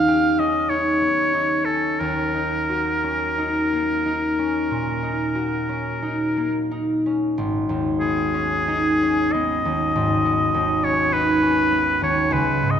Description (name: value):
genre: classical, impressionist duo for oboe and harp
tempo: 43-51 BPM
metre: 4/4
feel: rubato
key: G# minor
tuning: A4 = 442 Hz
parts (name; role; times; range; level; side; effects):
- clear oboe; melody; 0.0-12.8 s; G#4 to E#5; -22 LUFS; equal; none
- concert harp; accompaniment; 0.0-12.8 s; G#1 to G4; -21 LUFS; equal; none
room: moderate scoring stage reverb, RT60 2.0 s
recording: dark, warm production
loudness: -19 LUFS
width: side -8 dB against mid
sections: 0.0-7.4 A section; 7.4-12.8 B section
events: none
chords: 0.0 D#aug7; 2.0 D#m7; 7.4 G#m11